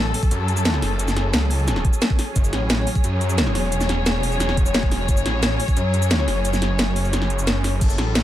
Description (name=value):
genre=dark technical drum and bass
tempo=176 BPM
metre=4/4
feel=straight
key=F# minor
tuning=A4 = 440 Hz
part: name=dark symphonic string section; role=sustained chords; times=0.0-8.2 s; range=F#3 to C#5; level=-25 LUFS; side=left 2 dB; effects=vintage 12-bit sampler grit, sidechain pumping
part: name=snarling distorted saw bass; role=bass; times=0.0-8.2 s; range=E1 to F#2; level=-22 LUFS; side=equal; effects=distortion, overdrive
part: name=drum and bass drum kit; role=drums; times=0.1-8.2 s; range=cabasa, crash cymbal, hi-hat, snare drum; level=-23 LUFS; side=equal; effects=none
part: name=electronic kick drum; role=drums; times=0.2-5.8, 7.8-7.9 s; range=none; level=-19 LUFS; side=equal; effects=none
room=little or no reverb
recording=none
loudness=-18 LUFS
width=side -13 dB against mid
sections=0.0-8.2 A section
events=kick drops out 7.1-7.8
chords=0.0 F#madd9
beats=0.31 0.65 | 0.99 1.33 1.68 2.02 | 2.36 2.70 3.04 3.38 | 3.72 4.06 4.40 4.74 | 5.08 5.43 5.77 6.11 | 6.45 6.79 7.13 7.47 | 7.81 8.15